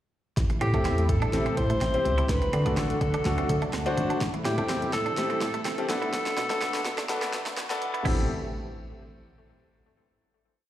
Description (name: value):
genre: dance-pop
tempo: 125 BPM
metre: 4/4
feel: straight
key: A dorian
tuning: A4 = 441 Hz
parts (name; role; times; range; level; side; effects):
- warm analog pad; sustained chords; 0.4-8.3 s; C3 to G4; -37 LUFS; equal; chorus, sidechain pumping
- wide unison pluck; arpeggios; 0.4-8.3 s; D3 to D5; -41 LUFS; moving between left 5 dB and right 3 dB; none
- solid FM bass; bass; 0.4-8.3 s; F#1 to D3; -29 LUFS; equal; sidechain pumping
- deep house drum kit; drums; 0.4-8.2 s; crash cymbal, hi-hat, kick drum, snare drum; -31 LUFS; equal; none
- clean electric guitar; riff; 0.5-8.2 s; A3 to E4; -36 LUFS; right 6 dB; wide subtle chorus, slapback echo
- breathy alto saxophone; melody; 0.6-7.5 s; G4 to C5; -31 LUFS; equal; tape echo, slapback echo
- warm concert grand piano; accompaniment; 0.7-8.3 s; B3 to C5; -30 LUFS; left 2 dB; sidechain pumping, slapback echo
room: light reverb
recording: live gig heard through the venue's PA, recital hall reverb, high-pass filter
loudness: -24 LUFS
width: side -12 dB against mid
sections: 0.4-8.1 build; 8.1-10.0 final chord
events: build-up 0.4-8.1; drum fill 0.4-8.1; filter sweep 0.4-8.1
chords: 0.4 Am7; 2.3 D; 4.2 Am7; 5.9 Bm7; 8.1 Am7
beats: | 0.37 0.85 1.33 1.81 | 2.29 2.77 3.25 3.73 | 4.21 4.69 5.17 5.65 | 6.13 6.61 7.09 7.57 | 8.05